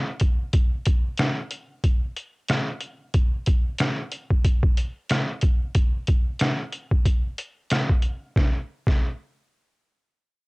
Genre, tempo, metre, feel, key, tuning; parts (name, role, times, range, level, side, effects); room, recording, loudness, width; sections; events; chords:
hip hop; 92 BPM; 4/4; swing 56% on 16ths
trip hop sampler-style drum kit; drums; 0.2-9.0 s; hi-hat, kick drum, rim click, snare drum; -21 LUFS; equal; cassette tape
light reverb; home recording on cassette; -21 LUFS; side -29 dB against mid
0.0-8.4 A section; 8.4-10.5 B section